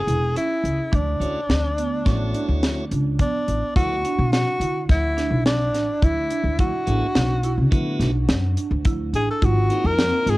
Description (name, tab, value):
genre	progressive instrumental, band music in an uneven meter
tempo	106 BPM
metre	5/4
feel	straight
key	D lydian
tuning	A4 = 440 Hz
part	warm tenor saxophone	melody	0.0-10.4 s	D4 to Bb4	-24 LUFS	left 1 dB	cassette tape, tape echo
part	upright bass	bass	0.0-10.4 s	E1 to D3	-22 LUFS	equal	none
part	marimba with medium mallets	arpeggios	0.1-10.4 s	B3 to C#5	-29 LUFS	right 7 dB	cassette tape
part	crisp fusion drum kit	drums	0.1-10.4 s	hi-hat, kick drum, snare drum	-23 LUFS	equal	cassette tape
part	tonewheel organ	accompaniment	1.2-10.4 s	A3 to C#5	-30 LUFS	equal	overdrive, stopped rotary speaker, cassette tape
part	vibraphone with soft mallets	second line	9.4-10.4 s	B#3 to D#4	-29 LUFS	left 7 dB	cassette tape
room	small room ambience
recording	home recording on cassette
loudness	-19 LUFS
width	side -19 dB against mid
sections	0.0-3.8 A section; 3.8-10.4 B section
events	none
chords	0.0 F#7sus2 (rootless); 0.9 Dmaj7; 3.8 D6; 9.4 G#7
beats	0.35 | 0.92 1.49 2.06 2.62 3.19 | 3.76 4.32 4.89 5.46 6.02 | 6.59 7.16 7.72 8.29 8.85 | 9.42 9.98